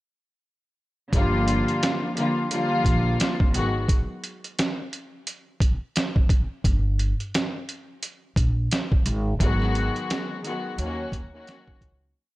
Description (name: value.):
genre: hip hop, boom-bap hip-hop.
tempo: 87 BPM.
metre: 4/4.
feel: swing 60% on 16ths.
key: unclear.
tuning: A4 = 440 Hz.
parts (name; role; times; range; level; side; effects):
dark studio string section; accompaniment; 1.1-3.9, 9.4-12.0 s; D3 to Gb4; -25 LUFS; left 1 dB; cassette tape, high-pass filter, low-pass filter.
upright bass; bass; 1.1-12.1 s; G1 to Eb2; -25 LUFS; equal; none.
trip hop sampler-style drum kit; drums; 1.1-12.0 s; hi-hat, kick drum, snare drum; -23 LUFS; equal; overdrive, vintage 12-bit sampler grit.
room: small room reverb.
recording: none.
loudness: -22 LUFS.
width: side -18 dB against mid.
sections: 1.1-12.2 verse.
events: break 3.9-6.6; fade-out 9.4-12.2.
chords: 1.1 Gm7; 3.5 Abm7; 5.3 N.C.; 6.6 Gm; 9.1 Abm7; 10.8 Ebm7.